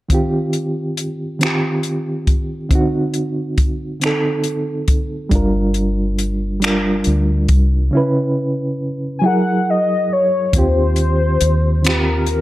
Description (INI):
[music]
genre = slow six-eight R&B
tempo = 46 BPM (dotted quarters)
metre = 6/8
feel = straight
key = Eb major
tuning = A4 = 440 Hz
[part]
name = reed electric piano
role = accompaniment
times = 0.1-12.4 s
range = Db3 to Cb5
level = -19 LUFS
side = right 1 dB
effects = fast tremolo
[part]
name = compact cocktail drum kit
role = drums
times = 0.1-12.4 s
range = finger snaps, hi-hat, kick drum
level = -18 LUFS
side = equal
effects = none
[part]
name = deep dub fingered electric bass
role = bass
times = 5.3-12.4 s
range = G1 to Eb2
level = -17 LUFS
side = equal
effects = none
[part]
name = warm velvety synth lead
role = melody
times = 9.2-12.4 s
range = Bb4 to Ab5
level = -18 LUFS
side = left 3 dB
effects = chorus, slapback echo
[sound]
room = light reverb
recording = dark, warm production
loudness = -15 LUFS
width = side -16 dB against mid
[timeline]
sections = 0.1-10.5 A section; 10.5-12.4 B section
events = none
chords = 0.1 Eb69; 2.7 D7b9; 5.3 Gm7; 7.9 Dbm7; 9.2 Gb9; 10.5 Eb69